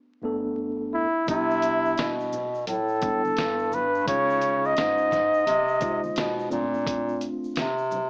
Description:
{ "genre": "hip hop, jazz-hop", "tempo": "86 BPM", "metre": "4/4", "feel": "swing 63% on 16ths", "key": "unclear", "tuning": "A4 = 440 Hz", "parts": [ { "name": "mellow tine electric piano", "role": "accompaniment", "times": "0.2-7.7 s", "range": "G2 to C5", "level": "-33 LUFS", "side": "equal", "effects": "none" }, { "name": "warm flugelhorn", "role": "melody", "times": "0.9-6.5 s", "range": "E4 to Eb5", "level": "-26 LUFS", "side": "equal", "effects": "none" }, { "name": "clear bass clarinet", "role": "bass", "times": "1.3-8.1 s", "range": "G2 to Db3", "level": "-30 LUFS", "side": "equal", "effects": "none" }, { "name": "lo-fi sampler-style drum kit", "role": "drums", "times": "1.3-8.1 s", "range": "hi-hat, kick drum, shaker, snare drum", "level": "-34 LUFS", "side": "equal", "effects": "none" }, { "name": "tube shaker and congas", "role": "percussion", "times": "1.3-8.1 s", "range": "none", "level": "-46 LUFS", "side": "equal", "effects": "none" } ], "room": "light reverb", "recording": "vinyl crackle, small speaker sound", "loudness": "-25 LUFS", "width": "mono", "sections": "0.0-8.1 A section", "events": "none", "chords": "0.0 Gadd9; 1.3 Cmaj9; 4.1 Dbmaj9; 6.5 Bbmaj9" }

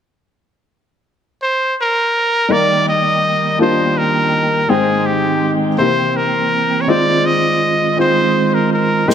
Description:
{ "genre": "slow gospel", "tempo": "55 BPM (dotted quarters)", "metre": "6/8", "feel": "straight", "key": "Eb major", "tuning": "A4 = 440 Hz", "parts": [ { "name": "bright trumpet", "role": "melody", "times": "1.4-9.1 s", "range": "G4 to Eb5", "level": "-15 LUFS", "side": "equal", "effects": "ping-pong delay" }, { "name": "warm upright piano", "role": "accompaniment", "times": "2.5-9.1 s", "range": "Ab2 to G5", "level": "-18 LUFS", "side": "left 4 dB", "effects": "lush chorus" }, { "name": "mellow tonewheel organ", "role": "sustained chords", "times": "2.5-9.1 s", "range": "Bb2 to G5", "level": "-19 LUFS", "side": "right 4 dB", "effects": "fast rotary speaker, chorus vibrato" }, { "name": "snare drum", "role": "drums", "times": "9.1 s", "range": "none", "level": "-14 LUFS", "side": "left 2 dB", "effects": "none" } ], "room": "moderate plate reverb, RT60 2.6 s", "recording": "bright 1980s-style digital production", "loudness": "-13 LUFS", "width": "side -8 dB against mid", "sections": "0.3-2.5 A section; 2.5-9.1 B section", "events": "none", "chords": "0.3 N.C.; 2.5 Ebmaj7; 4.7 Abmaj7; 5.8 C7; 6.9 Fm7" }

